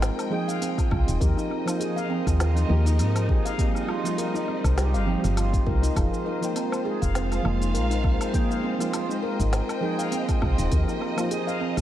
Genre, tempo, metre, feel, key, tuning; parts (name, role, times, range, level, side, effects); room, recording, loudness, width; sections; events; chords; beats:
organic downtempo; 101 BPM; 4/4; swing 55% on 16ths; F minor; A4 = 440 Hz
deep mellow chord stab; accompaniment; 0.0-11.8 s; F3 to G5; -31 LUFS; right 2 dB; chorus, phaser, cassette tape, sidechain pumping, analog delay
rich studio string section; sustained chords; 0.0-11.8 s; F3 to G5; -33 LUFS; left 1 dB; vintage 12-bit sampler grit, sidechain pumping
handpan; arpeggios; 0.0-11.8 s; C4 to F5; -28 LUFS; right 1 dB; analog delay
woody FM bass; bass; 0.0-11.8 s; Eb1 to Ab2; -23 LUFS; equal; sidechain pumping
organic electronic drum kit; drums; 0.0-11.8 s; hi-hat, shaker, snare drum, woodblock; -35 LUFS; left 1 dB; studio reverb, analog delay
electronic kick drum; drums; 0.8-11.8 s; -25 LUFS; equal; studio reverb
light reverb; echo-heavy mix; -22 LUFS; side -12 dB against mid
0.0-11.8 A section
0.0 Abmaj7; 1.2 Ebsus2; 3.6 Cm; 6.0 Fm; 8.3 Abmaj7
0.02 0.62 | 1.21 1.81 2.40 3.00 | 3.59 4.18 4.78 5.37 | 5.96 6.56 7.15 7.75 | 8.34 8.94 9.53 10.12 | 10.72 11.31